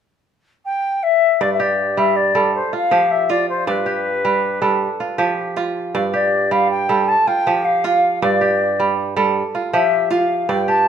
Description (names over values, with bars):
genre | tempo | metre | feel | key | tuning
west african traditional | 106 BPM (dotted quarters) | 12/8 | straight | G mixolydian | A4 = 441 Hz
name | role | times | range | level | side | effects
silver concert flute | melody | 0.6-10.9 s | B4 to A5 | -17 LUFS | left 3 dB | none
kora | arpeggios | 1.4-10.9 s | G2 to D5 | -18 LUFS | right 4 dB | none
room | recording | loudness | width
moderate recital hall reverb, RT60 1.7 s | minimal, uncompressed stereo recording | -15 LUFS | side -8 dB against mid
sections
0.0-1.4 A section; 1.4-10.9 B section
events
none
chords
0.0 N.C.; 1.4 G5; 2.5 F; 3.7 G; 4.8 F; 5.9 G5; 7.1 F; 8.2 G5; 9.4 F